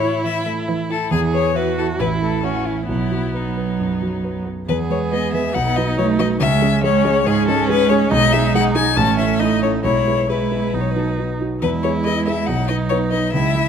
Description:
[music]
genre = quick classical-period movement for piano quartet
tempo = 138 BPM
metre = 4/4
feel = rubato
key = E major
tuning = A4 = 441 Hz
[part]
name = rich violin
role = melody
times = 0.0-13.7 s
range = D#4 to A5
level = -21 LUFS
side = left 8 dB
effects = none
[part]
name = rich cello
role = second line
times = 0.0-13.7 s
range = E3 to B3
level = -23 LUFS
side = right 7 dB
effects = none
[part]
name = clear viola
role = accompaniment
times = 0.0-13.7 s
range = B3 to G#4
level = -25 LUFS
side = right 4 dB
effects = none
[part]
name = dark concert grand piano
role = accompaniment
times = 0.0-13.7 s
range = A1 to E5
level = -20 LUFS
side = right 1 dB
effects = none
[sound]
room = moderate scoring stage reverb, RT60 1.9 s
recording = close, detailed microphones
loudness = -16 LUFS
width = side -7 dB against mid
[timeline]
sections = 0.0-4.7 A section; 4.7-13.7 B section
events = none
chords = 0.0 A; 1.1 E; 2.0 A; 2.9 B; 4.7 E; 5.5 B; 6.4 C#m; 8.1 G#m/B; 9.0 A; 9.8 E/B; 10.7 B; 11.6 E; 12.5 B

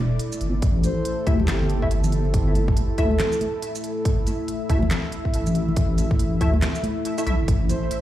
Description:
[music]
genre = deep dubstep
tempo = 140 BPM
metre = 4/4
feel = swing 60% on 16ths, half-time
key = A minor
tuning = A4 = 440 Hz
[part]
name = dark analog pad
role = sustained chords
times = 0.0-8.0 s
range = A3 to E5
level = -29 LUFS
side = equal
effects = chorus
[part]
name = deep soft wobble bass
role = bass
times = 0.0-7.9 s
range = E1 to D2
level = -22 LUFS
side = equal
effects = chorus
[part]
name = dubstep drum kit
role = drums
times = 0.2-8.0 s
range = handclaps, hi-hat, shaker, snare drum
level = -30 LUFS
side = equal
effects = studio reverb
[part]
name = electronic kick drum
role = drums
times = 0.6-7.6 s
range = none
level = -22 LUFS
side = equal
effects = studio reverb
[part]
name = breathy flute-like synth lead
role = melody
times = 0.8-3.6, 7.7-8.0 s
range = G4 to C5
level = -31 LUFS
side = right 2 dB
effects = chorus, dub echo
[part]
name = congas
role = percussion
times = 0.8-7.8 s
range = none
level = -31 LUFS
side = right 2 dB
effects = dub echo
[part]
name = filtered dub chord stab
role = stabs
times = 1.3-7.3 s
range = A3 to E5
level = -32 LUFS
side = left 2 dB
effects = ensemble chorus, vintage 12-bit sampler grit, dub echo
[sound]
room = digital ambience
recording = played on a big sound system in a bare room, large studio reverb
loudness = -20 LUFS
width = side -13 dB against mid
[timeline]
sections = 0.0-8.0 A section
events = none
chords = 0.0 A5

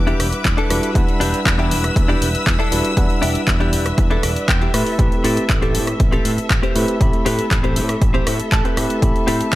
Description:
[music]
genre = nu-disco, nu disco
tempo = 119 BPM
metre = 4/4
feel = straight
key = E minor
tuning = A4 = 438 Hz
[part]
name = tine electric piano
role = accompaniment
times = 0.0-9.6 s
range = G3 to B5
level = -23 LUFS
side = equal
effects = sidechain pumping, tape echo
[part]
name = rich symphonic string section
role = sustained chords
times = 0.0-9.6 s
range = A4 to E6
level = -27 LUFS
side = left 1 dB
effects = sidechain pumping
[part]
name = modern bright picked electric bass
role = bass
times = 0.0-9.6 s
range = E1 to A2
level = -22 LUFS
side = equal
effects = none
[part]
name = direct-recorded clean electric guitar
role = riff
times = 0.1-9.5 s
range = C4 to A5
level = -24 LUFS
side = left 1 dB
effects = wide subtle chorus, tape echo
[part]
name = house drum kit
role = drums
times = 0.1-9.6 s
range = handclaps, hi-hat, rim click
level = -23 LUFS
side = equal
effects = studio ambience
[part]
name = electronic kick drum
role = drums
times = 0.4-9.6 s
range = none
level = -18 LUFS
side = equal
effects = studio ambience
[sound]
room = little or no reverb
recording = none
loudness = -15 LUFS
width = side -16 dB against mid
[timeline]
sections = 0.0-9.6 A section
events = clean electric guitar fill 4.0-5.0, 8.0-9.0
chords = 0.0 Em7; 4.7 Am7

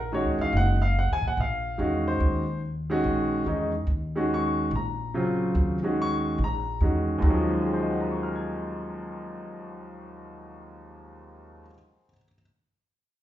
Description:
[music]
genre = modal jazz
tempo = 143 BPM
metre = 4/4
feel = swing 65% on 8ths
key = Eb dorian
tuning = A4 = 440 Hz
[part]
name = clear baby grand piano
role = accompaniment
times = 0.0-12.4 s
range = Eb2 to Ab6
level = -27 LUFS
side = equal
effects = none
[part]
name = upright bass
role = bass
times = 0.0-11.6 s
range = Gb1 to Bb2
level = -28 LUFS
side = equal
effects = none
[sound]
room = wet large studio reverb, RT60 0.8 s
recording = band playing live in one room, nothing above 7.7 kHz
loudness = -24 LUFS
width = side -12 dB against mid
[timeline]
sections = 0.0-7.2 A section; 7.2-10.6 B section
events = none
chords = 0.0 Ebm11

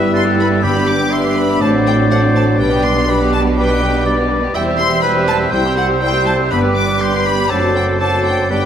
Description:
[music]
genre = quick classical-period movement for symphony orchestra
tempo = 122 BPM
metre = 4/4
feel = rubato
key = unclear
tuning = A4 = 438 Hz
[part]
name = clear studio violin section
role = melody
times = 0.0-8.7 s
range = E5 to D6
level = -21 LUFS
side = left 3 dB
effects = none
[part]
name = clear oboe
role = second line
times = 0.0-8.7 s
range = G4 to E5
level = -21 LUFS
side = equal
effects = none
[part]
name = mellow flute section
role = second line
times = 0.0-8.7 s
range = D6 to E6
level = -25 LUFS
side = left 2 dB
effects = none
[part]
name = rich studio violin section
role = second line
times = 0.0-8.6 s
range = E4 to E5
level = -25 LUFS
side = left 2 dB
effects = none
[part]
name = warm clarinet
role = second line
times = 0.0-8.7 s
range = B4 to C5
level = -24 LUFS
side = equal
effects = none
[part]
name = warm bassoon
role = accompaniment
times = 0.0-8.7 s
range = F#3 to G3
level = -21 LUFS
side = right 3 dB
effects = none
[part]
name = warm studio viola section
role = accompaniment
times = 0.0-8.7 s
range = G3 to G4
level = -24 LUFS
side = equal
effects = none
[part]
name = dark French horn section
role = sustained chords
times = 0.0-8.7 s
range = B3 to E4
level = -21 LUFS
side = left 3 dB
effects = none
[part]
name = rich studio cello section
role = bass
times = 0.0-8.7 s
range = C2 to B2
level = -22 LUFS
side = right 3 dB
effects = none
[part]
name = rich studio double bass section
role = bass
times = 0.0-8.7 s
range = E1 to C2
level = -21 LUFS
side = right 2 dB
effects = none
[part]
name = timpani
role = percussion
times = 0.6-1.3, 6.5-7.2 s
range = G2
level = -28 LUFS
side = left 1 dB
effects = none
[sound]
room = wet scoring stage reverb, RT60 1.6 s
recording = none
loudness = -12 LUFS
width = side -9 dB against mid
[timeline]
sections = 0.0-8.7 A section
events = none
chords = 0.0 Em/G; 0.6 G; 1.6 D7/A; 2.6 G/B; 4.5 C/E; 5.5 C; 6.5 G; 7.5 D7/F#

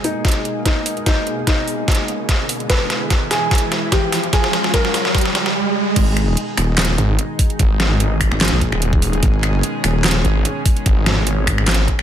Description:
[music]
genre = heavy wobble dubstep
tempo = 147 BPM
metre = 4/4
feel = swing 54% on 16ths, half-time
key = G# minor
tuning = A4 = 440 Hz
[part]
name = felt-muted upright piano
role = melody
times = 0.0-5.6 s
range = D#4 to B4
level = -23 LUFS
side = left 2 dB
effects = low-pass filter, digital delay
[part]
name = lush unison pad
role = sustained chords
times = 0.0-12.0 s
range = B2 to G#4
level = -25 LUFS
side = equal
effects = chorus, sidechain pumping
[part]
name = dubstep drum kit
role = drums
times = 0.0-12.0 s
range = crash cymbal, finger snaps, handclaps, hi-hat, snare drum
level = -20 LUFS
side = equal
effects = high-pass filter on hats, high-pass filter on snare, high-pass filter on cymbals, high-pass filter on room
[part]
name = riser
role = sound effects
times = 1.4-6.0 s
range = none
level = -23 LUFS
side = right 3 dB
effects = none
[part]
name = electronic kick drum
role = drums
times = 0.2-12.0 s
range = none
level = -17 LUFS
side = equal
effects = none
[part]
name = wobble bass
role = bass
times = 6.0-10.2 s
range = D#1 to A#1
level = -18 LUFS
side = equal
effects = chorus, overdrive
[part]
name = snarling distorted saw bass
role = bass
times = 7.0-11.9 s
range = D#1 to G#1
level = -17 LUFS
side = equal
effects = distortion, overdrive
[sound]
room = light reverb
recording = none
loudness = -15 LUFS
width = side -10 dB against mid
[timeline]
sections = 0.0-6.0 A section; 6.0-12.0 B section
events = build-up 0.0-6.0; drum fill 0.0-5.6; riser 1.4-6.0; drop 6.0-12.0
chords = 0.0 G#madd9; 2.7 E; 4.3 C#; 6.0 G#m

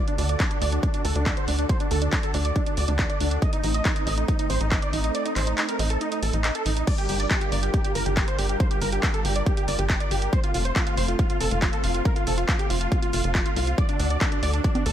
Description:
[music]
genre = uplifting trance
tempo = 139 BPM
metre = 4/4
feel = straight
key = G minor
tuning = A4 = 440 Hz
[part]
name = big supersaw lead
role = melody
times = 0.0-14.9 s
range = D4 to Eb5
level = -28 LUFS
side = right 1 dB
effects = sidechain pumping, low-pass filter, ping-pong delay
[part]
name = analog string pad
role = sustained chords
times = 0.0-14.9 s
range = D3 to Bb4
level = -32 LUFS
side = equal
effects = ensemble chorus, sidechain pumping
[part]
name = punchy analog drum machine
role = drums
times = 0.1-14.9 s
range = congas, crash cymbal, handclaps, hi-hat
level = -30 LUFS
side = equal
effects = studio reverb
[part]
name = tight sequencer bass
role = bass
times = 0.2-14.9 s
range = F1 to D2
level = -26 LUFS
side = equal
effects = sidechain pumping
[part]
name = electronic kick drum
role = drums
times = 0.4-14.7 s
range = none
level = -24 LUFS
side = equal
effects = overdrive, studio reverb
[sound]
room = digital ambience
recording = none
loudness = -21 LUFS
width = side -10 dB against mid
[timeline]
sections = 0.0-14.9 A section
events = kick drops out 5.1-6.9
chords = 0.0 D; 3.4 Adim; 6.9 Gm7; 10.3 F; 13.8 D

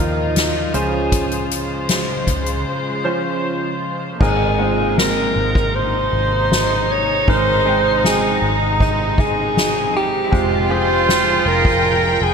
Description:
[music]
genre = pop ballad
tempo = 78 BPM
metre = 4/4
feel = straight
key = Ab major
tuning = A4 = 438 Hz
[part]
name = breathy alto saxophone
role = melody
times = 0.0-12.3 s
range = Eb4 to Db5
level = -19 LUFS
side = right 1 dB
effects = none
[part]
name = warm baby grand piano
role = accompaniment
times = 0.0-12.3 s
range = Ab2 to G5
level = -23 LUFS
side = right 1 dB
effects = analog chorus
[part]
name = dark studio string section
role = sustained chords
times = 0.0-12.3 s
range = C3 to G5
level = -26 LUFS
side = left 2 dB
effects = none
[part]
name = vintage muted fingered electric bass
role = bass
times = 0.0-12.3 s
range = F1 to Eb2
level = -24 LUFS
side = equal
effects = none
[part]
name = soft-mallet drum kit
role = drums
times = 0.4-12.3 s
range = crash cymbal, hi-hat, kick drum, ride cymbal, snare drum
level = -21 LUFS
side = left 1 dB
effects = none
[part]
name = rich studio cello section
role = second line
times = 4.2-12.3 s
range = C4 to F4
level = -22 LUFS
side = right 1 dB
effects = none
[sound]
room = moderate lush hall reverb, RT60 2.7 s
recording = bright 1980s-style digital production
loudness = -15 LUFS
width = side -6 dB against mid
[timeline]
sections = 0.0-4.2 A section; 4.2-12.3 B section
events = break 2.7-4.2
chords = 0.0 Ebadd9; 0.7 Dbmaj7; 4.2 Abadd9; 10.3 Fmadd9

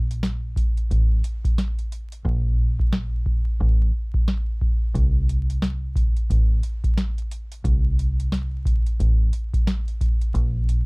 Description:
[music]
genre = hip hop, boom-bap hip-hop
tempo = 89 BPM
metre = 4/4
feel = swing 61% on 16ths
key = unclear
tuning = A4 = 441 Hz
[part]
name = deep dub fingered electric bass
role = bass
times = 0.0-10.9 s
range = A1 to C2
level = -23 LUFS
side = equal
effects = none
[part]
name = booming analog drum machine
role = drums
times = 0.1-10.9 s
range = hi-hat, kick drum, snare drum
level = -21 LUFS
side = equal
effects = none
[sound]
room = little or no reverb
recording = dark, warm production, vinyl crackle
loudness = -20 LUFS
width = side -36 dB against mid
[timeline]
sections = 0.0-10.9 A section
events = hi-hats muted 2.3-4.9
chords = none

